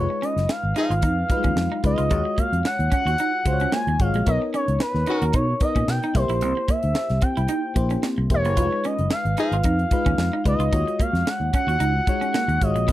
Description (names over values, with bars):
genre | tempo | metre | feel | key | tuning
polished 1980s jazz-funk pop | 111 BPM | 4/4 | swing 54% on 16ths | Eb minor | A4 = 440 Hz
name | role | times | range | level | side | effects
expressive portamento lead | melody | 0.0-12.9 s | B4 to Ab5 | -25 LUFS | equal | chorus, slapback echo
FM electric piano | accompaniment | 0.0-12.9 s | Gb3 to D#5 | -28 LUFS | left 3 dB | lush chorus
electric guitar at the edge of break-up | riff | 0.0-12.9 s | Ab3 to Gb4 | -29 LUFS | right 4 dB | wide subtle chorus
fingered electric bass | bass | 0.0-12.9 s | E1 to B2 | -23 LUFS | equal | none
tight funk drum kit | drums | 0.2-12.9 s | hi-hat, kick drum, snare drum | -24 LUFS | equal | none
warm horn section | second line | 0.8-0.9, 5.1-5.2, 9.4-9.6 s | D#3 to Ab4 | -26 LUFS | left 4 dB | none
room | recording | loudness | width
light reverb | dry, close 1970s-style studio recording | -19 LUFS | side -14 dB against mid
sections
0.0-12.9 A section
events
none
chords
0.0 Fm7b5; 2.1 Ebm11; 4.3 Bmaj9; 6.1 C7; 8.6 Fm7b5; 10.7 Ebm11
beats
0.49 1.03 1.57 | 2.11 2.65 3.19 3.72 | 4.26 4.80 5.34 5.88 | 6.42 6.96 7.49 8.03 | 8.57 9.11 9.65 10.19 | 10.73 11.26 11.80 12.34 | 12.88